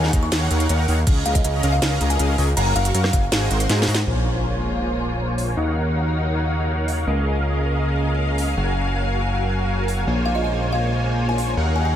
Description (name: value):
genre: future bass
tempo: 160 BPM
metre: 4/4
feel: half-time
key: unclear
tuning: A4 = 445 Hz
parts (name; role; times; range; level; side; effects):
- supersaw chords; riff; 0.0-12.0 s; Gb3 to Db6; -25 LUFS; equal; ensemble chorus, sidechain pumping, low-pass filter, ping-pong delay
- fat analog bass; bass; 0.0-12.0 s; Gb1 to Ab2; -21 LUFS; equal; sidechain pumping
- trap drum kit; drums; 0.0-11.5 s; crash cymbal, hi-hat, rim click, snare drum; -26 LUFS; equal; none
- electronic kick drum; drums; 0.1-3.2 s; none; -18 LUFS; equal; none
- buzzing kalimba; melody; 0.2-3.4, 10.3-11.9 s; Eb5 to Db6; -27 LUFS; left 1 dB; sidechain pumping, ping-pong delay
- rich studio string section; sustained chords; 4.1-12.0 s; Db3 to F5; -31 LUFS; left 2 dB; sidechain pumping
- sub drop; sound effects; 4.1-5.6 s; none; -30 LUFS; equal; none
room: light reverb, digital ambience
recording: none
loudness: -18 LUFS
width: side -10 dB against mid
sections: 0.0-4.1 A section; 4.1-12.0 B section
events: drop 0.0-4.1; kick drops out 3.3-4.1; drum fill 3.7-4.1; band accent 3.9; impact 4.1-5.6; filter sweep on supersaw synth 4.1-12.0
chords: 0.0 Ebm7; 1.1 Db6; 2.6 Gbmaj7; 3.3 Ab7; 4.1 Bbm7; 5.6 Ebm7; 7.1 Db6; 8.6 Gbmaj7; 10.1 Bbm7